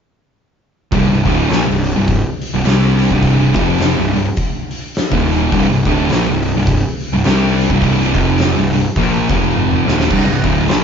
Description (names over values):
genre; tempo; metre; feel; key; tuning
stoner and doom metal; 104 BPM; 4/4; swing 58% on 8ths; C minor; A4 = 440 Hz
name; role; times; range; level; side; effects
thick fuzz guitar; riff; 0.9-10.8 s; C2 to C4; -18 LUFS; left 8 dB; distortion
thick fuzz guitar; riff; 0.9-10.8 s; C2 to C4; -17 LUFS; right 7 dB; distortion
fuzz picked electric bass; bass; 0.9-10.8 s; C1 to C2; -19 LUFS; equal; overdrive, tube saturation
oversized low-tuned drum kit; drums; 0.9-10.8 s; crash cymbal, hi-hat, kick drum, snare drum, toms; -18 LUFS; equal; none
room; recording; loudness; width
light reverb; band playing live in one room, nothing above 7.5 kHz; -12 LUFS; side -7 dB against mid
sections
0.9-10.8 A section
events
drum fill 9.5-10.1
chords
0.9 Cm; 9.3 F5; 9.8 Cm